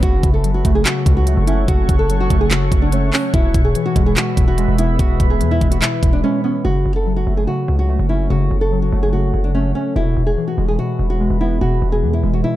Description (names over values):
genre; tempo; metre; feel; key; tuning
hip hop, trap; 145 BPM; 4/4; half-time; F# minor; A4 = 440 Hz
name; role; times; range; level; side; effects
nylon-string guitar; melody; 0.0-12.6 s; C#4 to A4; -22 LUFS; equal; ping-pong delay
warbly lo-fi synth keys; accompaniment; 0.0-12.6 s; B2 to C#4; -21 LUFS; left 1 dB; chorus
deep dark ambient pad; sustained chords; 0.0-12.6 s; G#4 to C#6; -28 LUFS; equal; chorus, built-in reverb
hard-hitting 808-style bass; bass; 0.0-12.4 s; E1 to E2; -18 LUFS; equal; none
trap drum kit; drums; 0.0-6.1 s; handclaps, hi-hat, kick drum; -16 LUFS; equal; none
room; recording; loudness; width
digital ambience; dark, warm production; -14 LUFS; side -14 dB against mid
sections
0.0-6.6 A section; 6.6-12.6 B section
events
break 6.2-6.6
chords
0.0 F#m; 3.3 E; 6.6 F#m; 10.0 E